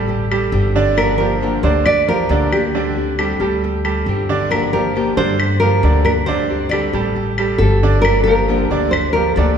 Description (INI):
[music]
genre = latin, Cuban son and guajira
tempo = 136 BPM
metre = 4/4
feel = straight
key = G minor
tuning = A4 = 440 Hz
[part]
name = nylon-string guitar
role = melody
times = 0.0-9.6 s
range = G4 to D5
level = -18 LUFS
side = equal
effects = none
[part]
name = nylon-string guitar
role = accompaniment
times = 0.0-9.6 s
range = D3 to G4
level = -23 LUFS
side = left 5 dB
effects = none
[part]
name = bright concert grand piano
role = arpeggios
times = 0.0-9.6 s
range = D3 to D5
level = -20 LUFS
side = right 4 dB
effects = none
[part]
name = upright bass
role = bass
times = 0.0-9.6 s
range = G1 to G2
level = -19 LUFS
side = left 1 dB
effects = none
[part]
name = claves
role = percussion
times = 0.3-9.1 s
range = none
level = -26 LUFS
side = left 2 dB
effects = none
[sound]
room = wet church reverb, RT60 2.6 s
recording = recorded in a church or concert hall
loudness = -14 LUFS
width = side -7 dB against mid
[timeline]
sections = 0.0-9.6 A section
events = none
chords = 0.0 D7sus4; 1.0 Gm7; 2.7 D7sus4; 4.5 Gm7; 6.3 D7sus4; 8.0 Gm7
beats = 0.09 0.53 | 0.97 1.42 1.86 2.30 | 2.74 3.18 3.63 4.07 | 4.51 4.95 5.39 5.84 | 6.28 6.72 7.16 7.60 | 8.04 8.48 8.93 9.37